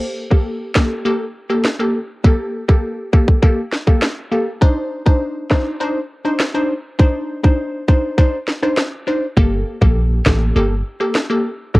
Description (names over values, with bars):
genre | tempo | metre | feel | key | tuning
dancehall | 101 BPM | 4/4 | straight | G minor | A4 = 440 Hz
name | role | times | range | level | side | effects
wavetable chord stab | accompaniment | 0.0-11.8 s | Bb3 to C5 | -19 LUFS | equal | cassette tape
island pop drum kit | drums | 0.3-11.8 s | kick drum, rim click, snare drum | -13 LUFS | equal | none
warm 808-style bass | bass | 9.4-11.8 s | G1 to Bb1 | -16 LUFS | equal | none
room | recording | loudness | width
little or no reverb | home recording on cassette, lossy compression artefacts | -15 LUFS | side -21 dB against mid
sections
0.0-11.8 A section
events
none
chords
0.0 Gmadd9; 4.6 Cmadd9; 9.4 Gmadd9